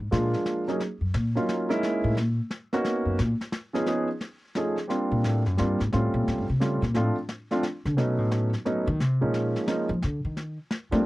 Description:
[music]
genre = jazz piano trio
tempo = 176 BPM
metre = 3/4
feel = swing 64% on 8ths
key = F# major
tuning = A4 = 440 Hz
[part]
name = upright bass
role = bass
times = 0.0-11.0 s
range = F#2 to A3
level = -25 LUFS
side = equal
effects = none
[part]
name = warm concert grand piano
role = melody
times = 0.1-11.1 s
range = E#3 to G#4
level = -26 LUFS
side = right 1 dB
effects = none
[part]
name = snare drum and brushed snare drum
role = drums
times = 0.1-11.1 s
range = none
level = -34 LUFS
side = left 1 dB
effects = none
[sound]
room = little or no reverb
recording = dry, close 1970s-style studio recording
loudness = -24 LUFS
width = side -18 dB against mid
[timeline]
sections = 0.0-4.9 A section; 4.9-11.1 A section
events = upright bass solo 0.0-11.1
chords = 0.0 A#7; 0.8 D#m9; 1.8 F#13 (rootless); 2.9 Bmaj9; 3.9 C#9; 4.6 F7alt; 4.9 Bb69; 5.9 A7alt; 7.0 Dm7; 8.0 B9; 9.0 Db69; 10.0 F13 (rootless)

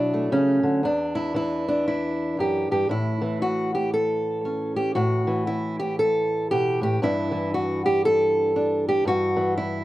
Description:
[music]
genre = folk, solo fingerstyle acoustic guitar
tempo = 117 BPM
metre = 4/4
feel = swing 62% on 8ths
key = unclear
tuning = A4 = 440 Hz
[part]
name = fingerpicked steel-string acoustic guitar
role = solo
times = 0.0-9.8 s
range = E2 to A4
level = -21 LUFS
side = equal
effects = none
[sound]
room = little or no reverb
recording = recorded outdoors, with no room sound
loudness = -21 LUFS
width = side -16 dB against mid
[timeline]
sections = 0.0-2.9 A section; 2.9-9.8 B section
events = none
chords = 0.0 Bm7; 0.8 Em; 2.9 A5; 7.0 Em7/G

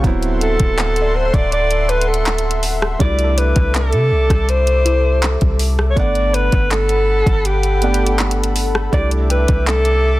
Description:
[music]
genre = contemporary R&B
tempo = 81 BPM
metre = 4/4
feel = straight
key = G major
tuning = A4 = 440 Hz
[part]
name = felt-muted upright piano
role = accompaniment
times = 0.0-10.2 s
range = F#3 to F#5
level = -26 LUFS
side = right 5 dB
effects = none
[part]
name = warm analog pad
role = sustained chords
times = 0.0-10.2 s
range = A4 to D6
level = -25 LUFS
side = left 2 dB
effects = chorus
[part]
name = soft 808-style bass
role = bass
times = 0.0-10.2 s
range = D1 to C3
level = -18 LUFS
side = equal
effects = none
[part]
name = smooth R&B drum kit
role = drums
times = 0.0-10.0 s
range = handclaps, hi-hat, kick drum, rim click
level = -18 LUFS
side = equal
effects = soft clipping on snare
[part]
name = warm alto saxophone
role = melody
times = 0.4-10.2 s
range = G4 to D5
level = -19 LUFS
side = equal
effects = none
[part]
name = soft round pluck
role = texture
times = 0.8-10.2 s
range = E4 to E5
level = -30 LUFS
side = left 2 dB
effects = none
[sound]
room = little or no reverb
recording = dense, heavily limited modern master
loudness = -14 LUFS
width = side -17 dB against mid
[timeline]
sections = 0.0-10.2 A section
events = none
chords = 0.0 D13; 3.0 C69; 6.0 Gmaj9; 8.9 C69

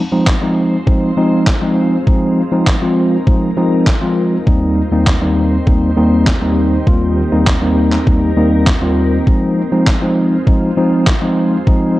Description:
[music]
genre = dance-pop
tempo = 100 BPM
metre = 4/4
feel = straight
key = F minor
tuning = A4 = 440 Hz
[part]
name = glassy FM pad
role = sustained chords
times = 0.5-12.0 s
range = Eb3 to C5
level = -22 LUFS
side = equal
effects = ensemble chorus, built-in reverb, sidechain pumping
[part]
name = tine electric piano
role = accompaniment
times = 0.1-12.0 s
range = Eb2 to F4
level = -13 LUFS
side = equal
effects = slow stereo tremolo, sidechain pumping
[part]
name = crisp 8-bit digital drum machine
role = drums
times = 0.3-11.8 s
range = handclaps, kick drum, snare drum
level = -14 LUFS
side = equal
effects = vintage 12-bit sampler grit
[sound]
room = light reverb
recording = dry, gritty hardware recording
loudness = -11 LUFS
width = side -17 dB against mid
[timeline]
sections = 0.0-12.0 A section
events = none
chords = 0.0 Fm7; 4.5 Cm7/Eb; 9.3 Fm7

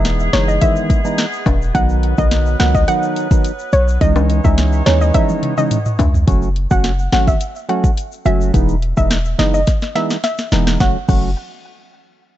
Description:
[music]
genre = dancehall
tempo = 106 BPM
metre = 4/4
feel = straight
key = F# dorian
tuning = A4 = 436 Hz
[part]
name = percussive organ stab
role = accompaniment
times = 0.0-11.3 s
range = D#3 to F#4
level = -20 LUFS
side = right 2 dB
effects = chorus, low-pass filter
[part]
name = warm woodwind section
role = sustained chords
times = 0.0-6.3 s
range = E3 to C#5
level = -28 LUFS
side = right 1 dB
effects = sidechain pumping
[part]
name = warm 808-style bass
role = bass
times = 0.0-11.4 s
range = E1 to D#2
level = -16 LUFS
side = equal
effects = none
[part]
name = afro-pop drum kit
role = drums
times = 0.0-11.2 s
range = crash cymbal, hi-hat, kick drum, snare drum, toms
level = -17 LUFS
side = equal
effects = none
[part]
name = tube shaker and timbales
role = percussion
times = 0.1-11.3 s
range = none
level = -28 LUFS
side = left 6 dB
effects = none
[part]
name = soft round pluck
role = melody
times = 0.3-11.3 s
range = C#5 to F#5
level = -21 LUFS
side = equal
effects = chorus, low-pass filter, digital delay
[sound]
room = little or no reverb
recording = nothing above 8.0 kHz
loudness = -13 LUFS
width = side -13 dB against mid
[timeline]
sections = 0.0-6.3 A section; 6.3-10.8 B section; 10.8-12.4 C section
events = drum fill 5.1-6.3, 9.7-10.8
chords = 0.0 Emaj7; 1.7 B; 4.0 C#madd9; 6.3 F#m; 8.5 Emaj7; 10.8 F#m

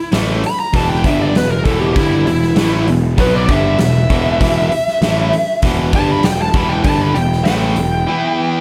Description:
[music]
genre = hard rock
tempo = 98 BPM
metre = 4/4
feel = straight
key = E minor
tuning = A4 = 440 Hz
[part]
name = bluesy overdriven lead guitar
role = melody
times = 0.0-8.6 s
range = E4 to B5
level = -20 LUFS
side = equal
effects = distortion, digital delay
[part]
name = distorted electric guitar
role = riff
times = 0.1-8.6 s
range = E2 to E4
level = -24 LUFS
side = equal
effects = overdrive
[part]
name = overdriven semi-hollow guitar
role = riff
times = 0.1-8.6 s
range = E2 to E4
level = -23 LUFS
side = equal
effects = none
[part]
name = fuzz picked electric bass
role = bass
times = 0.1-8.1 s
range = E1 to B1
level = -21 LUFS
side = equal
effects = overdrive
[part]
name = big rock drum kit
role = drums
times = 0.1-7.9 s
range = hi-hat, kick drum, snare drum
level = -21 LUFS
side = equal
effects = none
[sound]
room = light reverb, studio ambience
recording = none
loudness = -15 LUFS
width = mono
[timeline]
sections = 0.0-8.6 A section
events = lead electric guitar solo 0.0-8.6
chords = 0.0 Em

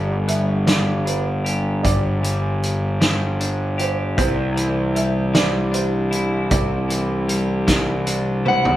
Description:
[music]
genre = post-rock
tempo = 51 BPM (dotted quarters)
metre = 6/8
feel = straight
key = G major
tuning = A4 = 440 Hz
[part]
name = felt-muted upright piano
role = arpeggios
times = 0.0-8.8 s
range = B4 to E5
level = -28 LUFS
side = right 4 dB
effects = none
[part]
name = twelve-string electric guitar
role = arpeggios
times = 0.0-8.8 s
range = G2 to G4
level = -26 LUFS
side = left 2 dB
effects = none
[part]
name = fuzz picked electric bass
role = bass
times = 0.0-8.8 s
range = G1 to C2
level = -21 LUFS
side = equal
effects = overdrive
[part]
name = loose indie drum kit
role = drums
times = 0.3-8.8 s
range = hi-hat, kick drum, snare drum, toms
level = -21 LUFS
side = equal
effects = none
[part]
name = electric slide guitar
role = melody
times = 8.5-8.8 s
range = F#5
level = -16 LUFS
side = left 1 dB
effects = none
[sound]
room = moderate studio reverb, RT60 0.7 s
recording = band playing live in one room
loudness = -18 LUFS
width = side -13 dB against mid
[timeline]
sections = 0.0-8.8 A section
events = drum fill 8.5-8.8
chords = 0.0 G; 4.2 Cadd9

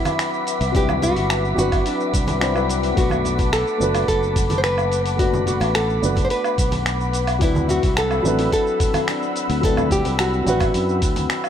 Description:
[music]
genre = sunset chillout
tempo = 108 BPM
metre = 4/4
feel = straight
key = unclear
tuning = A4 = 440 Hz
[part]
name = nylon-string guitar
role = melody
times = 0.0-11.5 s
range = D4 to C5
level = -23 LUFS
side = left 1 dB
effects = digital delay
[part]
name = dark concert grand piano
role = accompaniment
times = 0.0-11.5 s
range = F#3 to C5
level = -26 LUFS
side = moving between left 9 dB and right 4 dB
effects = auto-pan, digital delay
[part]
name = airy breathy pad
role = sustained chords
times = 0.0-11.5 s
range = C4 to E6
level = -26 LUFS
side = left 2 dB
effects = chorus
[part]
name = wind-like tuned noise texture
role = texture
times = 0.0-11.5 s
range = B5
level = -33 LUFS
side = left 1 dB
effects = built-in reverb
[part]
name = dusty soul sampler-style drum kit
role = drums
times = 0.1-11.5 s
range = finger snaps, hi-hat, shaker, woodblock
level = -26 LUFS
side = right 1 dB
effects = none
[part]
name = congas and bongos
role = percussion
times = 0.1-11.3 s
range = none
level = -29 LUFS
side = right 3 dB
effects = none
[part]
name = fingered electric bass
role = bass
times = 0.6-11.3 s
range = F#1 to F#2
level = -23 LUFS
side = equal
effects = none
[part]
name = electronic kick drum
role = drums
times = 0.7-11.1 s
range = none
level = -22 LUFS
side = equal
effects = none
[sound]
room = light reverb, digital ambience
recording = none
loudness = -17 LUFS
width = side -9 dB against mid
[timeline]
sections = 0.0-11.5 A section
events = none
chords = 0.0 Cmaj9#11; 3.0 Bm7; 7.4 D13

